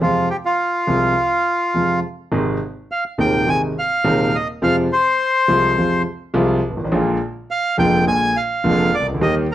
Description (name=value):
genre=tango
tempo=104 BPM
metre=4/4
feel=rubato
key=Ab major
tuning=A4 = 440 Hz
part: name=bandoneon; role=melody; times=0.0-9.5 s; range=F4 to Ab5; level=-18 LUFS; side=equal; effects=none
part: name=warm concert grand piano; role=accompaniment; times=0.0-9.5 s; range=Eb1 to G4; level=-18 LUFS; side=equal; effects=none
room=moderate studio reverb, RT60 0.7 s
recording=worn, warbling old tape, cassette tape, warbly pitch drift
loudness=-16 LUFS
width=side -12 dB against mid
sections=0.0-2.3 A section; 2.3-9.5 B section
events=none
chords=0.0 Fm; 2.3 Ab; 4.6 Fm; 6.9 Bb7